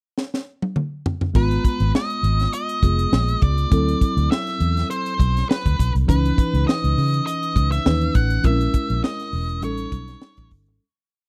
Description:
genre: polished 1980s jazz-funk pop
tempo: 101 BPM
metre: 4/4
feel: swing 54% on 16ths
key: unclear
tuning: A4 = 444 Hz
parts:
  - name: tight funk drum kit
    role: drums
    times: 0.2-10.8 s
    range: crash cymbal, hi-hat, kick drum, snare drum, toms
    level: -23 LUFS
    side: equal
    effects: none
  - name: tine electric piano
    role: accompaniment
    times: 1.3-10.8 s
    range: E3 to A#5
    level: -28 LUFS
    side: equal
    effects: subtle chorus
  - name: vintage muted fingered electric bass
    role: bass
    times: 1.3-10.8 s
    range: E1 to C#3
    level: -23 LUFS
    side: equal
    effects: none
  - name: octave-fuzz lead guitar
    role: melody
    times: 1.4-10.5 s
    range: B4 to F#5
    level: -29 LUFS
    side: equal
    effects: distortion
room: little or no reverb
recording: dry, close 1970s-style studio recording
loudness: -21 LUFS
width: mono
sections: 0.0-1.4 pickup bar; 1.4-10.8 verse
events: drum fill 0.2-1.4; fade-out 8.4-10.8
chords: 0.0 N.C.; 1.4 G#m69; 3.7 D13; 6.1 C#m9; 8.4 A#m7b5; 9.6 A7#11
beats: 0.17 0.76 | 1.35 1.95 2.54 3.13 | 3.72 4.31 4.90 5.49 | 6.08 6.68 7.27 7.86 | 8.45 9.04 9.63 10.22

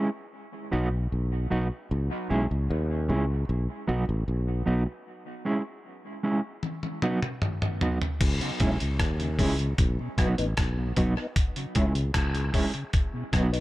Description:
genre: dub reggae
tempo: 76 BPM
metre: 4/4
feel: straight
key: C# minor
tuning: A4 = 437 Hz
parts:
  - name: mellow electric guitar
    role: accompaniment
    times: 0.0-13.5 s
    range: F#3 to G#4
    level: -30 LUFS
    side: right 2 dB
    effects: tremolo, dub echo
  - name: sustaining fretless electric bass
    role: bass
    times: 0.7-13.6 s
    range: A1 to D#2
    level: -27 LUFS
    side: equal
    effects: none
  - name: dusty soul sampler-style drum kit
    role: drums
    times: 6.6-13.6 s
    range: crash cymbal, hi-hat, kick drum, rim click, toms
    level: -27 LUFS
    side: equal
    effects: none
  - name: mellow tonewheel organ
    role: accompaniment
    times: 8.4-13.6 s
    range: B2 to E4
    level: -34 LUFS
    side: left 2 dB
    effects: chorus vibrato, slow rotary speaker
room: light reverb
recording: none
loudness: -25 LUFS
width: side -17 dB against mid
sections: 0.0-8.2 A section; 8.2-13.6 B section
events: break 5.1-8.2; drum fill 6.6-8.2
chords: 0.3 B; 1.9 C#m; 3.5 B; 5.1 C#m; 6.6 B; 8.2 C#m; 9.8 B; 11.4 C#m; 12.9 B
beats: 0.32 1.11 | 1.90 2.69 3.48 4.27 | 5.05 5.84 6.63 7.42 | 8.21 9.00 9.79 10.57 | 11.36 12.15 12.94

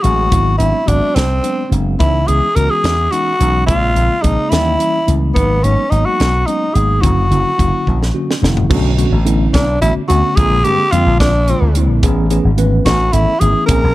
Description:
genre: electric jazz fusion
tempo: 72 BPM (dotted quarters)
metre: 6/8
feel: straight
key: B dorian from 8.7 s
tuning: A4 = 437 Hz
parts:
  - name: growling tenor saxophone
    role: melody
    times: 0.0-13.9 s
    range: B3 to A#4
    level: -16 LUFS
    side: equal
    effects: none
  - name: tine electric piano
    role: accompaniment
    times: 0.0-13.9 s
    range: C#3 to B4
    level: -19 LUFS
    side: equal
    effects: overdrive, fast stereo tremolo
  - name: slap bass with an envelope filter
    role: bass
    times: 0.0-13.9 s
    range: E1 to G2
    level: -15 LUFS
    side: equal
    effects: none
  - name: crisp fusion drum kit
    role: drums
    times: 0.0-13.8 s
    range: crash cymbal, hi-hat, kick drum, snare drum, toms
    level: -18 LUFS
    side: equal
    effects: none
room: light reverb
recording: dark, warm production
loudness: -11 LUFS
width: side -16 dB against mid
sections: 0.0-8.7 A section; 8.7-13.9 B section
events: drum fill 7.9-8.7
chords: 0.3 G#7alt; 2.0 C#m7; 3.7 A#m7; 4.5 D#7b9; 5.4 G#m7; 7.0 F#7b13; 8.7 Bm9; 10.4 A#9; 12.0 Amaj9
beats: | 0.31 1.15 | 1.99 2.83 | 3.67 4.51 | 5.35 6.19 | 7.03 7.87 | 8.70 9.53 | 10.37 11.20 | 12.03 12.86 | 13.69

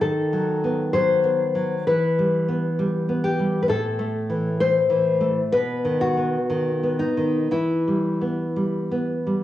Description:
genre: romantic duo for nylon-string guitar and classical guitar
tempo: 57-67 BPM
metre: 4/4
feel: rubato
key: E minor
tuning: A4 = 440 Hz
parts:
  - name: nylon-string guitar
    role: melody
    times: 0.0-9.4 s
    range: D#4 to C5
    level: -22 LUFS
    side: left 3 dB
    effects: cassette tape, analog delay
  - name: nylon-string guitar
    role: accompaniment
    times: 0.0-9.4 s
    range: A2 to B3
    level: -23 LUFS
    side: right 1 dB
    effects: cassette tape
room: wet studio reverb, RT60 0.5 s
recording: home recording on cassette, studio reverb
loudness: -20 LUFS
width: side -13 dB against mid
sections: 0.0-9.4 A section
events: none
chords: 0.0 B7/D#; 1.9 Em; 3.7 Am; 5.5 B; 7.5 Em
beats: | 0.02 0.95 1.88 2.80 | 3.70 4.61 5.53 6.49 | 7.51 8.57

